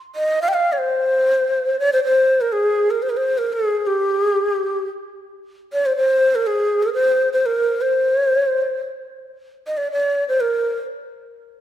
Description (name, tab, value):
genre	arabic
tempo	122 BPM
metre	4/4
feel	straight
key	C maqam bayati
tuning	A4 = 440 Hz
part	breathy ney	solo	0.2-10.8 s	G4 to G5	-17 LUFS	equal	none
room	moderate concert hall reverb, RT60 2.0 s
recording	none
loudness	-17 LUFS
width	side -11 dB against mid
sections	0.0-2.0 A section; 2.0-11.6 B section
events	none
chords	none